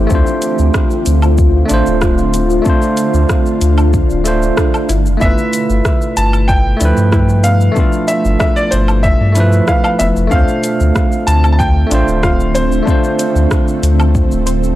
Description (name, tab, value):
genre	sunset chillout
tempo	94 BPM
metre	4/4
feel	straight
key	D dorian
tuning	A4 = 440 Hz
part	bell-like tine electric piano	accompaniment	0.0-14.8 s	F3 to C5	-16 LUFS	moving between left 4 dB and right 3 dB	auto-pan, analog delay
part	shimmering ambient pad	sustained chords	0.0-14.8 s	B2 to F4	-20 LUFS	right 1 dB	chorus, built-in reverb
part	soft round pluck	arpeggios	0.0-14.8 s	B3 to C5	-26 LUFS	left 3 dB	none
part	warm sub bass	bass	0.0-14.7 s	D1 to G2	-13 LUFS	equal	tube saturation
part	deep house drum kit	drums	0.1-14.8 s	cabasa, hi-hat, rim click, woodblock	-23 LUFS	equal	small room reverb
part	electronic kick drum	drums	0.1-14.3 s	none	-14 LUFS	equal	small room reverb
part	bright grand piano	melody	5.2-14.7 s	C5 to A5	-19 LUFS	equal	analog delay
room	digital ambience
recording	dry, gritty hardware recording, transformer saturation, cassette tape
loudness	-10 LUFS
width	side -14 dB against mid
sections	0.0-14.8 A section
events	none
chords	0.1 Dm7; 4.9 G13; 10.3 Dm7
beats	| 0.11 0.74 1.38 2.02 | 2.66 3.30 3.94 4.58 | 5.21 5.85 6.49 7.13 | 7.77 8.40 9.04 9.68 | 10.32 10.96 11.60 12.23 | 12.87 13.51 14.15